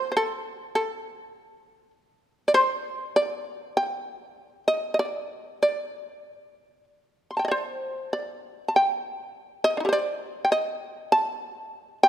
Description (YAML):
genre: japanese traditional, Japanese chamber music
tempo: 47-52 BPM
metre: 2/4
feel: rubato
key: D in sen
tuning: A4 = 443 Hz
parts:
  - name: shamisen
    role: solo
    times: 0.0-12.1 s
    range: D4 to C6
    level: -23 LUFS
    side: equal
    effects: none
room: light reverb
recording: minimal, uncompressed stereo recording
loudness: -24 LUFS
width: side -11 dB against mid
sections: 0.0-12.1 A section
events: none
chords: none